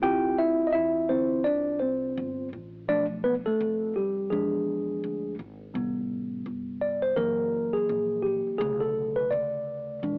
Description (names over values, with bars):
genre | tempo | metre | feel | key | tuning
hip hop, jazz-hop | 84 BPM | 4/4 | swing 60% on 16ths | unclear | A4 = 440 Hz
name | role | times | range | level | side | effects
tine electric piano | accompaniment | 0.0-10.2 s | C3 to G5 | -28 LUFS | equal | overdrive, cassette tape
upright bass | bass | 0.0-10.2 s | F1 to E2 | -45 LUFS | equal | none
room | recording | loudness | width
light reverb, small room ambience | home recording on cassette, AM radio sound | -28 LUFS | mono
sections
0.0-5.7 A section; 5.7-10.2 B section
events
tine electric piano solo 0.0-5.7, 5.7-10.2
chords
0.0 Dm9; 2.9 Bm7b5; 4.3 E7b9; 5.7 Am9; 7.2 F#7; 8.6 Bm9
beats
| 0.03 0.74 1.46 2.17 | 2.89 3.60 4.32 5.03 | 5.74 6.46 7.17 7.89 | 8.60 9.31 10.03